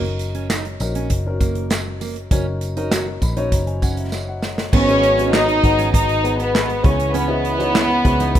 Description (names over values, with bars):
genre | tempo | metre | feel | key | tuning
piano-driven pop | 99 BPM | 4/4 | straight | G# minor | A4 = 440 Hz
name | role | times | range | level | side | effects
dark upright piano | accompaniment | 0.0-8.4 s | G#2 to B5 | -26 LUFS | left 4 dB | none
picked steel-string acoustic guitar | riff | 0.0-8.3 s | A#3 to F#4 | -28 LUFS | right 8 dB | none
vintage muted picked electric bass | bass | 0.0-8.4 s | F#1 to C#2 | -24 LUFS | equal | none
natural country drum kit | drums | 0.0-8.4 s | crash cymbal, handclaps, hi-hat, kick drum, snare drum | -20 LUFS | equal | none
tambourine | percussion | 0.2-4.6 s | none | -36 LUFS | right 5 dB | none
warm studio violin section | melody | 4.7-8.4 s | B3 to D#4 | -17 LUFS | equal | none
mellow French horn section | second line | 4.7-8.4 s | E3 to F#4 | -28 LUFS | right 4 dB | none
room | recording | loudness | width
studio ambience | rough home demo mix | -16 LUFS | side -11 dB against mid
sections
0.0-4.7 A section; 4.7-8.4 B section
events
upright piano fill 2.9-4.7; drum fill 4.1-4.7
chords
0.0 F#6; 4.7 G#m; 6.8 C#m7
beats
0.50 1.11 1.71 | 2.31 2.92 3.52 4.13 | 4.73 5.33 5.94 6.54 | 7.14 7.75 8.35